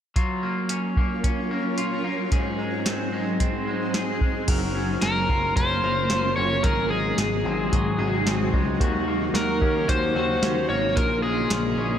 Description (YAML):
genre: dream pop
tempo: 111 BPM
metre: 4/4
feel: straight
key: unclear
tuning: A4 = 439 Hz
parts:
  - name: granular cloud pad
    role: sustained chords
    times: 0.9-12.0 s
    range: C3 to Db5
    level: -28 LUFS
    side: right 1 dB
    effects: built-in reverb
  - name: electric guitar at the edge of break-up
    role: arpeggios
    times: 0.2-12.0 s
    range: Ab2 to Bb4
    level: -28 LUFS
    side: left 2 dB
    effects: lush chorus, digital delay
  - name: soft vintage rhythm box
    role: drums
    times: 0.2-11.6 s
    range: crash cymbal, hi-hat, kick drum, snare drum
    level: -25 LUFS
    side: equal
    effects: none
  - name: picked electric bass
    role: bass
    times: 4.5-12.0 s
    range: Gb1 to Eb2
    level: -28 LUFS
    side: equal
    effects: none
  - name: overdriven slide guitar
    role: melody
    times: 5.0-12.0 s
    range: Ab4 to Db5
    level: -25 LUFS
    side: left 1 dB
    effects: digital delay
room: moderate scoring stage reverb, RT60 2.0 s, digital ambience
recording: none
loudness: -21 LUFS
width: side -9 dB against mid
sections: 0.2-4.5 A section; 4.5-12.0 B section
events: none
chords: 0.2 Gbmaj7; 2.3 Ab7; 4.5 Gbmaj7; 6.6 Ab7; 8.8 Ebm7; 11.0 Bbm7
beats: | 0.16 0.70 1.24 1.78 | 2.32 2.86 3.40 3.94 | 4.48 5.02 5.56 6.10 | 6.64 7.18 7.73 8.27 | 8.81 9.35 9.89 10.43 | 10.97 11.51